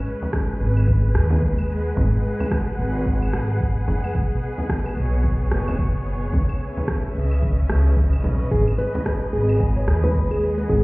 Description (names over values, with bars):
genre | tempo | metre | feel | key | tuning
organic downtempo | 110 BPM | 4/4 | swing 59% on 16ths | G# minor | A4 = 440 Hz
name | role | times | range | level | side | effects
clear symphonic string section | sustained chords | 0.0-10.8 s | B2 to F#5 | -28 LUFS | equal | sidechain pumping
organic electronic drum kit | drums | 0.1-10.8 s | claves, hi-hat, rim click, shaker | -31 LUFS | equal | none
frame drum | percussion | 0.2-10.8 s | none | -28 LUFS | equal | none
electronic kick drum | drums | 0.3-10.8 s | none | -23 LUFS | equal | none
upright bass | bass | 0.6-10.8 s | F#1 to D#2 | -21 LUFS | equal | tube saturation, sidechain pumping
nylon-string guitar | arpeggios | 8.5-10.8 s | G#4 to G#5 | -23 LUFS | equal | tape echo
room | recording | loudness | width
light reverb, small room ambience | heard muffled through a wall, stone room reverb, EQ | -19 LUFS | side -24 dB against mid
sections
0.0-10.8 A section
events
none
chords
0.0 G#m7; 4.2 B5; 6.3 C#m7; 8.5 G#m7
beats
0.33 0.88 1.42 | 1.97 2.51 3.06 3.60 | 4.15 4.70 5.24 5.79 | 6.33 6.88 7.42 7.97 | 8.51 9.06 9.61 10.15 | 10.70